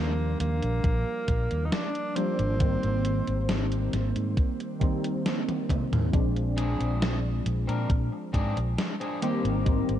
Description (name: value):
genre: vaporwave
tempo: 68 BPM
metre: 4/4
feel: straight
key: Ab lydian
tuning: A4 = 441 Hz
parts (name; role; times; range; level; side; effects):
- breathy tenor saxophone; melody; 0.0-3.9 s; Bb3 to Eb4; -34 LUFS; right 1 dB; tape echo
- warbly lo-fi synth keys; accompaniment; 0.0-10.0 s; Eb3 to D4; -30 LUFS; equal; wide subtle chorus, analog delay
- fingered electric bass; bass; 0.0-10.0 s; Ab1 to Bb2; -28 LUFS; equal; none
- gated 80s digital drum machine; drums; 0.4-10.0 s; hi-hat, snare drum, toms; -31 LUFS; equal; gated reverb, gated reverb snare, vintage 12-bit sampler grit
- electronic kick drum; drums; 0.8-9.8 s; none; -25 LUFS; equal; vintage 12-bit sampler grit
- electric guitar at the edge of break-up; riff; 6.6-9.9 s; Bb3 to Bb4; -34 LUFS; left 3 dB; wide subtle chorus, analog delay
room: light reverb, digital ambience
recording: dark, warm production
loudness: -25 LUFS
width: side -11 dB against mid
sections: 0.0-10.0 A section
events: drum fill 5.5-6.1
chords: 0.0 Ebmaj9; 2.6 Abmaj9; 6.1 Bb9; 9.2 Abmaj9